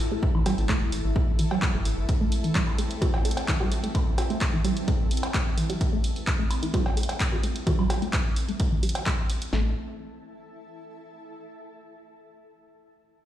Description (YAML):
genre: minimal techno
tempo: 129 BPM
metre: 4/4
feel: straight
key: A minor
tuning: A4 = 440 Hz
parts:
  - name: granular cloud pad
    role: texture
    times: 0.0-11.3 s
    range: E4 to A5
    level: -41 LUFS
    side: equal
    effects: built-in reverb, sidechain pumping
  - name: pulsing gated texture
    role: texture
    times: 0.0-9.6 s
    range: E3 to E4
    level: -39 LUFS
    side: left 2 dB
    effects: chorus, built-in reverb, sidechain pumping
  - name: resonant blip pluck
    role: riff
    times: 0.1-9.7 s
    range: E3 to A3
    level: -31 LUFS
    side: right 1 dB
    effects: chorus, phaser, vintage 12-bit sampler grit, sidechain pumping, tape echo
  - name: punchy analog drum machine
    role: drums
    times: 0.2-9.6 s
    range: kick drum, snare drum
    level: -25 LUFS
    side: equal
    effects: studio reverb
  - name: rubbery square bass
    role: bass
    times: 0.3-2.1, 9.5-9.7 s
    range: G1 to A1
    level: -27 LUFS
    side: equal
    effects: sidechain pumping
  - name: woodblock, cowbell and percussion blips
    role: percussion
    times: 0.3-9.2 s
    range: none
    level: -34 LUFS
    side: equal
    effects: studio reverb, tape echo
  - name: punchy analog drum machine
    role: drums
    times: 0.5-9.5 s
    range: handclaps, hi-hat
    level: -33 LUFS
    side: equal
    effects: studio reverb
room: light reverb, digital ambience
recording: played on a big sound system in a bare room, stone room reverb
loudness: -23 LUFS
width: side -12 dB against mid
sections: 0.0-9.5 A section; 9.5-11.4 B section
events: fade-out on ambient pad 0.0-9.5; filter sweep on synth arpeggio sound 0.0-9.5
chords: 0.0 A5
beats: | 0.23 0.69 1.16 1.62 | 2.09 2.55 3.02 3.48 | 3.95 4.41 4.88 5.34 | 5.81 6.27 6.74 7.20 | 7.67 8.13 8.60 9.06 | 9.53 9.99 10.46 10.92